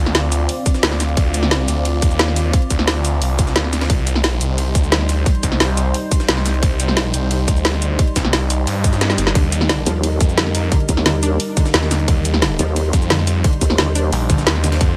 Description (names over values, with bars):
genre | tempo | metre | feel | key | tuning
dark technical drum and bass | 176 BPM | 4/4 | straight | unclear | A4 = 440 Hz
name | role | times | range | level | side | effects
dark analog pad | sustained chords | 0.0-15.0 s | G3 to D5 | -27 LUFS | equal | chorus, vintage 12-bit sampler grit, sidechain pumping
snarling distorted saw bass | bass | 0.0-15.0 s | G1 to G2 | -21 LUFS | equal | distortion, tube saturation
breakbeat sampler-style drum kit | drums | 0.1-14.9 s | hi-hat, ride cymbal, snare drum | -31 LUFS | equal | none
drum and bass drum kit | drums | 0.1-14.9 s | cabasa, hi-hat, snare drum | -21 LUFS | equal | none
electronic kick drum | drums | 0.7-14.9 s | none | -19 LUFS | equal | none
swell | sound effects | 8.8-9.4 s | none | -36 LUFS | equal | none
unison pluck | arpeggios | 9.4-14.9 s | D3 to D4 | -27 LUFS | equal | sidechain pumping, digital delay
vowel-sweep wobble bass | bass | 9.9-14.1 s | Eb2 | -20 LUFS | equal | chorus
room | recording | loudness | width
little or no reverb | none | -17 LUFS | mono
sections
0.0-15.0 A section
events
drum fill 9.0-9.4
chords
0.0 Dm7; 3.9 Cm; 9.4 Eb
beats
0.15 0.49 0.83 | 1.17 1.51 1.85 2.19 | 2.54 2.88 3.22 3.56 | 3.90 4.24 4.58 4.92 | 5.26 5.60 5.94 6.29 | 6.63 6.97 7.31 7.65 | 7.99 8.33 8.67 9.01 | 9.35 9.69 10.04 10.38 | 10.72 11.06 11.40 11.74 | 12.08 12.42 12.76 13.10 | 13.44 13.79 14.13 14.47 | 14.81